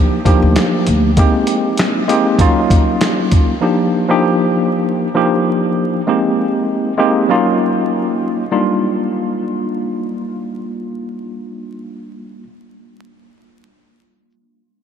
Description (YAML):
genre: hip hop, boom-bap hip-hop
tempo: 98 BPM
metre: 4/4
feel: swing 54% on 16ths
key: Eb major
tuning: A4 = 445 Hz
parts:
  - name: barky tine electric piano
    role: accompaniment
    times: 0.0-12.4 s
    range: F3 to G4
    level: -15 LUFS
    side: equal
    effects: medium stereo tremolo, cassette tape, high-pass filter, low-pass filter
  - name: dusty soul sampler-style drum kit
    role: drums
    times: 0.3-3.5 s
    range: hi-hat, kick drum, snare drum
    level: -15 LUFS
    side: equal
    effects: none
  - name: upright bass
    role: bass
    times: 0.4-1.1 s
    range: D2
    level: -16 LUFS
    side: equal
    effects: none
room: moderate huge ambient reverb, RT60 5.2 s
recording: dreamy mix soaked in reverb, vinyl crackle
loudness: -13 LUFS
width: side -8 dB against mid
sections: 0.0-8.5 A section; 8.5-11.0 B section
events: none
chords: 0.0 Ebmaj9; 1.2 Abmaj9; 2.4 Ebm9/Gb; 3.6 Ebmaj9; 6.1 Abmaj9; 7.3 Ebm9/Gb; 8.5 Ebmaj9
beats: 0.56 | 1.17 1.78 2.40 3.01 | 3.62 4.23 4.85 5.46 | 6.07 6.68 7.29 7.91 | 8.52 9.13 9.74 10.36